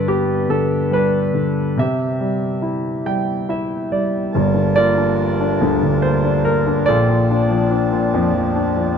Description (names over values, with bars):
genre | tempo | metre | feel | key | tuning
acoustic folk-pop ballad | 71 BPM | 3/4 | straight | unclear | A4 = 435 Hz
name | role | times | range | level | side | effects
warm grand piano | melody | 0.0-9.0 s | G1 to G5 | -16 LUFS | equal | none
pedal harmonium | sustained chords | 4.3-9.0 s | G2 to A5 | -23 LUFS | right 3 dB | none
room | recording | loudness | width
moderate spring reverb, RT60 2.5 s | dark, warm production | -16 LUFS | side -7 dB against mid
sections
0.0-4.3 A section; 4.3-9.0 B section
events
grand piano fill 2.6-4.3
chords
0.0 Gadd9; 1.8 C; 4.3 Gm7; 6.9 Bbmaj7